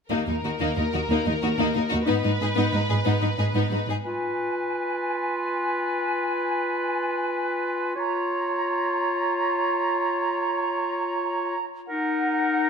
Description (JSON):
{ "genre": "cinematic, heroic adventure film score", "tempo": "122 BPM (dotted quarters)", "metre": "12/8", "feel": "straight", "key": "Eb minor", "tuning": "A4 = 439 Hz", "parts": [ { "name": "rich symphonic violin section", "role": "melody", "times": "0.1-3.8 s", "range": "Bb4 to Cb5", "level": "-30 LUFS", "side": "left 2 dB", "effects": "none" }, { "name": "bright symphonic violin section", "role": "second line", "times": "0.1-4.0 s", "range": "Bb3 to Ab4", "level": "-28 LUFS", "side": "left 5 dB", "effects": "none" }, { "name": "dark symphonic viola section", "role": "accompaniment", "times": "0.1-4.0 s", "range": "Eb4", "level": "-29 LUFS", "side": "left 2 dB", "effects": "none" }, { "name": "rich studio cello section", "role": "bass", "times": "0.1-3.9 s", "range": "Eb2 to Ab2", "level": "-25 LUFS", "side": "right 2 dB", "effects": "none" }, { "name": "bright clarinet", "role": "second line", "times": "4.0-12.7 s", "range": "Eb4 to F4", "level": "-27 LUFS", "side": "left 2 dB", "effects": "none" }, { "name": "small flute group", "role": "second line", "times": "4.0-12.7 s", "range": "Gb5 to Bb5", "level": "-28 LUFS", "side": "right 2 dB", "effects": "none" }, { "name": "warm oboe", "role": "second line", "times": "4.0-12.7 s", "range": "Bb4 to Db5", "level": "-29 LUFS", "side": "right 2 dB", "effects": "none" } ], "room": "moderate scoring stage reverb, RT60 1.8 s", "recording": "none", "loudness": "-23 LUFS", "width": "side -6 dB against mid", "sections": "0.1-4.0 A section; 4.0-12.7 B section", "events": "build-up 4.0-12.7", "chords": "0.1 Eb5; 2.1 Abm; 4.0 Fdim; 8.0 Bbm/F; 11.9 Ebm" }